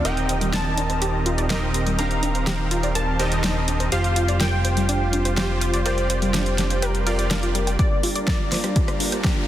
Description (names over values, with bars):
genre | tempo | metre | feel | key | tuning
progressive house | 124 BPM | 4/4 | straight | G minor | A4 = 440 Hz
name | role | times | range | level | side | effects
plucky unison lead | melody | 0.0-8.9 s | Bb4 to Bb5 | -29 LUFS | equal | lush chorus, dub echo
airy breathy pad | sustained chords | 0.0-9.5 s | Eb3 to C5 | -29 LUFS | right 2 dB | chorus, vintage 12-bit sampler grit, sidechain pumping
supersaw stab | stabs | 0.0-9.5 s | Bb3 to F5 | -28 LUFS | right 2 dB | sidechain pumping, low-pass filter, tape echo
fat analog bass | bass | 0.0-9.3 s | Eb1 to G2 | -25 LUFS | equal | sidechain pumping, high-pass filter
wide unison pluck | arpeggios | 0.1-9.3 s | G3 to G5 | -29 LUFS | equal | sidechain pumping, tape echo
deep house drum kit | drums | 0.1-9.3 s | hi-hat, rim click, snare drum | -27 LUFS | equal | overdrive
electronic kick drum | drums | 7.8-9.3 s | none | -21 LUFS | equal | overdrive
riser | sound effects | 8.6-9.5 s | none | -38 LUFS | left 1 dB | none
room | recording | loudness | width
light reverb, digital ambience | dense, heavily limited modern master | -19 LUFS | side -12 dB against mid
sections
0.0-7.8 A section; 7.8-9.5 B section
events
filter sweep on analog synth pad 0.0-7.8; build-up 7.8-9.5; filter sweep on synth pluck 7.8-9.5; filter sweep on supersaw synth 7.8-9.5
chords
0.1 Cm7/Eb; 3.9 Fsus2; 7.8 Gm7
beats
| 0.05 0.53 1.02 1.50 | 1.99 2.47 2.95 3.44 | 3.92 4.41 4.89 5.37 | 5.86 6.34 6.82 7.31 | 7.79 8.28 8.76 9.24